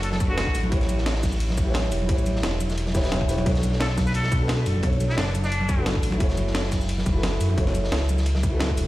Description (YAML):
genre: liquid drum and bass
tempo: 175 BPM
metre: 4/4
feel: swing 54% on 16ths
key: B minor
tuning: A4 = 440 Hz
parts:
  - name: trumpet with straight mute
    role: melody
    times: 0.0-0.6, 3.8-5.9 s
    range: D4 to B4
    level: -33 LUFS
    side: equal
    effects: dub echo
  - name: felt-muted upright piano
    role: accompaniment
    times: 0.0-8.9 s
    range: D4 to C#5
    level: -30 LUFS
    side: equal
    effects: dub echo
  - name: smooth synth bass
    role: bass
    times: 0.0-8.9 s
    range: E1 to F#2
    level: -24 LUFS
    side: equal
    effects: none
  - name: breakbeat sampler-style drum kit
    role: drums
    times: 0.0-8.8 s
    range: cabasa, crash cymbal, hi-hat, ride cymbal, snare drum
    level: -31 LUFS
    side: equal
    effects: none
  - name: crunchy breakbeat drum kit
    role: drums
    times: 0.0-8.9 s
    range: hi-hat, ride cymbal, snare drum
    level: -34 LUFS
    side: equal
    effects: high-pass filter on cymbals, high-pass filter on hats, high-pass filter on snare, high-pass filter on room
  - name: congas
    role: percussion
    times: 0.1-8.7 s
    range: none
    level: -32 LUFS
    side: equal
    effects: none
  - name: electronic kick drum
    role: drums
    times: 0.2-8.8 s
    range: none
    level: -24 LUFS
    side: equal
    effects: overdrive
room: studio ambience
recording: played on a big sound system in a bare room, stone room reverb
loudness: -21 LUFS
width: side -16 dB against mid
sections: 0.0-8.9 A section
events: none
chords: 0.0 Bm9; 0.7 A7; 3.5 Bm9; 6.2 F#m7